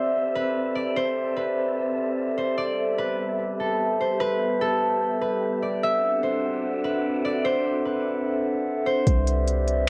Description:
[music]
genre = hip hop, atmospheric cloud-rap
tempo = 148 BPM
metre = 4/4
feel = half-time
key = C lydian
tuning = A4 = 440 Hz
[part]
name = concert harp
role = melody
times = 0.0-9.9 s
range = A4 to E5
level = -28 LUFS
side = equal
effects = analog delay
[part]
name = glass harmonica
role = sustained chords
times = 0.0-9.9 s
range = G3 to F#5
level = -30 LUFS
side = equal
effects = sidechain pumping, cassette tape
[part]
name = wind-like tuned noise texture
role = texture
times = 0.0-9.0 s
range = B3 to E5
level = -35 LUFS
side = equal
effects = built-in reverb, cassette tape, plate reverb
[part]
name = warm 808-style bass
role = bass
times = 9.1-9.9 s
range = C2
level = -26 LUFS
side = equal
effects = none
[part]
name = smooth R&B drum kit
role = drums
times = 9.1-9.8 s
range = hi-hat, kick drum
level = -24 LUFS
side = equal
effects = overdrive, cassette tape
[sound]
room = moderate studio reverb, RT60 0.6 s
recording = home recording on cassette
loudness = -25 LUFS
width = mono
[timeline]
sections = 0.0-9.1 A section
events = none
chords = 0.0 Cmaj7; 2.6 G69; 5.8 D9; 9.1 Cmaj7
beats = 0.15 0.56 | 0.96 1.37 1.77 2.18 | 2.58 2.99 3.39 3.80 | 4.20 4.61 5.01 5.42 | 5.83 6.23 6.64 7.04 | 7.45 7.85 8.26 8.66 | 9.07 9.47 9.88

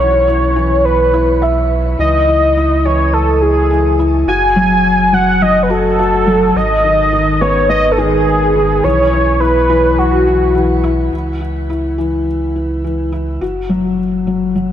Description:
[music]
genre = piano and strings electronica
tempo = 105 BPM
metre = 4/4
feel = straight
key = unclear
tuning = A4 = 440 Hz
[part]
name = warm velvety synth lead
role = melody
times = 0.0-10.8 s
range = F#4 to G#5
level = -13 LUFS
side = equal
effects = chorus, cassette tape, shimmer reverb, tape echo
[part]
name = felt-muted upright piano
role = riff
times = 0.0-14.7 s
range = D#3 to E5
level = -16 LUFS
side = left 2 dB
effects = shimmer reverb, tape echo
[part]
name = warm sub bass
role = bass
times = 0.0-14.7 s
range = F#1 to C#2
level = -18 LUFS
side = right 1 dB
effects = none
[sound]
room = moderate lush hall reverb, RT60 2.7 s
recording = none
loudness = -11 LUFS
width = side -10 dB against mid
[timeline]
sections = 0.0-11.1 A section; 11.1-14.7 B section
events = none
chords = 0.0 Bsus4; 2.0 C#m; 4.3 F#m; 6.6 G#m; 8.8 Bsus4; 11.1 C#m; 13.4 N.C.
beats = 0.28 0.85 1.42 | 1.99 2.56 3.13 3.70 | 4.28 4.85 5.42 5.99 | 6.56 7.13 7.70 8.28 | 8.85 9.42 9.99 10.56 | 11.13 11.70 12.28 12.85 | 13.42 13.99 14.56

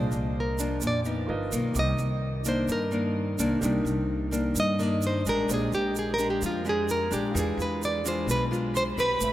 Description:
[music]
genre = bossa nova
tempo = 129 BPM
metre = 4/4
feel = straight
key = C minor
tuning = A4 = 440 Hz
[part]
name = nylon-string guitar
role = melody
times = 0.0-9.3 s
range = F4 to Eb5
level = -29 LUFS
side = right 1 dB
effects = none
[part]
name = nylon-string guitar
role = accompaniment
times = 0.0-9.3 s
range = G2 to B4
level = -29 LUFS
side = left 1 dB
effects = none
[part]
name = warm baby grand piano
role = accompaniment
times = 0.0-9.3 s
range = Eb4 to D6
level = -38 LUFS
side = right 3 dB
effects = none
[part]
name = upright bass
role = bass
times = 0.0-9.3 s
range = G1 to G2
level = -31 LUFS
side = equal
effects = none
[part]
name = egg shaker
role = percussion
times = 0.1-9.3 s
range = none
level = -37 LUFS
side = right 6 dB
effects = none
[part]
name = warm symphonic violin section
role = second line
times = 8.7-9.3 s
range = B5 to C6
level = -33 LUFS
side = right 1 dB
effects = none
[sound]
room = wet cathedral reverb, RT60 6.5 s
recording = in a vast, echoing space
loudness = -24 LUFS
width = side -14 dB against mid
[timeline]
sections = 0.0-9.2 A section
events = nylon-string guitar solo 0.0-9.2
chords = 0.0 Bb7/C; 1.3 G7alt; 1.8 Cm9; 5.5 Bb13; 7.4 E7b9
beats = 0.36 0.82 1.29 | 1.76 2.23 2.69 3.16 | 3.62 4.09 4.56 5.02 | 5.49 5.95 6.42 6.89 | 7.35 7.82 8.28 8.75 | 9.21

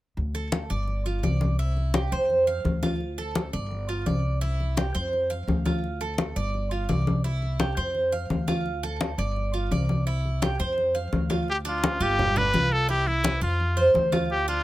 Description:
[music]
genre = latin, Cuban son and guajira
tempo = 170 BPM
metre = 4/4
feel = straight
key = C major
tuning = A4 = 440 Hz
[part]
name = upright bass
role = bass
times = 0.2-14.6 s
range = G1 to F2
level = -28 LUFS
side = equal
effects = none
[part]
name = congas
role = percussion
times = 0.2-14.6 s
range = none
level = -28 LUFS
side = left 2 dB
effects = none
[part]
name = Cuban tres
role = arpeggios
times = 0.3-14.6 s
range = D4 to F5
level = -28 LUFS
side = right 2 dB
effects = slapback echo
[part]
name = bright trumpet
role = melody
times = 11.5-14.6 s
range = E4 to B4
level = -24 LUFS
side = equal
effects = none
[sound]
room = little or no reverb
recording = close, detailed microphones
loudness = -23 LUFS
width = side -16 dB against mid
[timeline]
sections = 0.2-11.5 A section; 11.5-14.6 B section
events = none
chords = 0.2 D5; 0.9 G5; 1.6 C; 2.3 F5; 3.0 Dm; 3.7 G5; 4.4 C; 5.1 F5; 5.8 Dm; 6.5 G5; 7.2 C; 8.0 F5; 8.7 Dm; 9.4 G5; 10.1 C; 10.8 F5; 11.5 Dm; 12.2 G7; 12.9 Cmaj7; 13.6 F5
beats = | 0.17 0.53 0.88 1.23 | 1.59 1.94 2.30 2.65 | 3.00 3.36 3.71 4.07 | 4.42 4.77 5.13 5.48 | 5.83 6.19 6.54 6.89 | 7.25 7.60 7.95 8.30 | 8.66 9.01 9.36 9.72 | 10.07 10.42 10.78 11.13 | 11.48 11.83 12.19 12.54 | 12.89 13.24 13.60 13.95 | 14.30

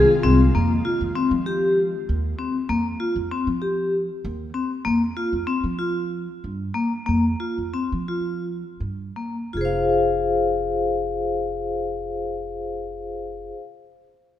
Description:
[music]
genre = contemporary instrumental, chamber music in an uneven meter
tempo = 158-196 BPM (eighths)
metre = 7/8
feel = straight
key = F minor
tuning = A4 = 439 Hz
[part]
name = ethereal airy pad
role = sustained chords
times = 0.0-0.5 s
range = Eb3 to F4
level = -30 LUFS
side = left 1 dB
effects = ensemble chorus, built-in reverb
[part]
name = vibraphone with medium hard mallets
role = arpeggios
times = 0.0-13.6 s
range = Bb3 to F5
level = -22 LUFS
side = left 2 dB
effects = none
[part]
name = upright bass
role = bass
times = 0.0-13.5 s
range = F1 to F3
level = -27 LUFS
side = right 1 dB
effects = none
[sound]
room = moderate concert hall reverb, RT60 2.1 s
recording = none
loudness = -21 LUFS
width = side -11 dB against mid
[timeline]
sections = 0.5-9.5 A section; 9.5-14.4 B section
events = slowing down 4.9-9.5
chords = 0.0 Fm7; 0.5 Fsus2; 4.9 Bb5/F; 9.5 Fm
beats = 0.24 | 0.54 0.85 1.16 1.46 1.77 2.08 2.38 | 2.69 3.00 3.31 3.62 3.93 4.24 4.54 | 4.85 5.16 5.47 5.79 6.10 6.42 6.75 | 7.07 7.41 7.74 8.09 8.44 8.79 9.16 | 9.54 9.91 10.29 10.67 11.05 11.43 11.81 | 12.19 12.57 12.95 13.33

